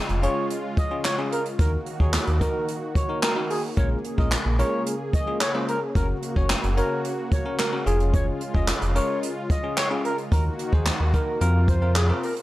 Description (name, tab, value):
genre	dance-pop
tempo	110 BPM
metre	4/4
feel	straight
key	unclear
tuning	A4 = 440 Hz
part	bell-like tine electric piano	accompaniment	0.0-12.3 s	Ab3 to Db5	-31 LUFS	left 2 dB	sidechain pumping
part	warm analog pad	sustained chords	0.0-12.4 s	C3 to Ab4	-31 LUFS	equal	chorus, sidechain pumping
part	sub bass with octave	bass	0.1-12.1 s	F1 to F2	-22 LUFS	equal	sidechain pumping
part	jazz brush drum kit	drums	0.1-12.4 s	handclaps, hi-hat, kick drum, snare drum	-25 LUFS	equal	none
part	expressive synth lead	melody	0.2-12.3 s	Ab4 to Eb5	-29 LUFS	equal	chorus, sidechain pumping
room	small room ambience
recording	dry, gritty hardware recording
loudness	-21 LUFS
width	side -16 dB against mid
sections	0.0-12.4 A section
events	none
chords	0.0 Db/F; 1.6 Ebm; 3.8 Bbm7; 6.0 Gb; 7.9 Db/F; 10.3 Ebm; 11.4 Fsus4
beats	0.50 1.05 | 1.59 2.14 2.68 3.23 | 3.77 4.32 4.86 5.41 | 5.96 6.50 7.05 7.59 | 8.14 8.68 9.23 9.77 | 10.32 10.86 11.41 11.96